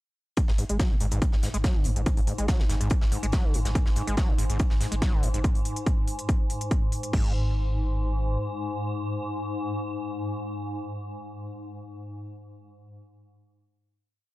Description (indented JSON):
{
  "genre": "driving peak-time techno",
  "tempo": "142 BPM",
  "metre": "4/4",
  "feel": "straight",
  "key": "unclear",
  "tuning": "A4 = 440 Hz",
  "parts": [
    { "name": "overdriven acid bass", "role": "riff", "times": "0.4-7.3 s", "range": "G#2 to G#3", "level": "-32 LUFS", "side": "equal", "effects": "distortion, sidechain pumping, analog delay" },
    { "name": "swarming drone", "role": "drone", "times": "1.0-11.3 s", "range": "G#2", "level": "-32 LUFS", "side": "left 1 dB", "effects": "built-in reverb, sidechain pumping" },
    { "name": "electronic kick drum", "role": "drums", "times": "0.4-7.2 s", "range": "none", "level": "-24 LUFS", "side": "equal", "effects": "overdrive, small room ambience" },
    { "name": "techno drum kit", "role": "drums", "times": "0.4-7.2 s", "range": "crash cymbal, hi-hat", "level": "-38 LUFS", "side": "equal", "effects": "overdrive, small room ambience" },
    { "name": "tight metal drum kit", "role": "drums", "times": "0.4-5.3 s", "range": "hi-hat, snare drum", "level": "-42 LUFS", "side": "left 1 dB", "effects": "high-pass filter on hats, small room ambience, high-pass filter on snare, high-pass filter on room" },
    { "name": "saturated sub bass", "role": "bass", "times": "0.5-8.4 s", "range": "G#1", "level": "-28 LUFS", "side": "equal", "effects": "overdrive, sidechain pumping, low-pass filter" }
  ],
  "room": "little or no reverb",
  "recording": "dry, gritty hardware recording, cassette tape",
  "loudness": "-24 LUFS",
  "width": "side -18 dB against mid",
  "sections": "0.4-7.1 groove; 7.1-10.5 final note",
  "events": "filter sweep on acid bass 0.4-5.4",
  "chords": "none"
}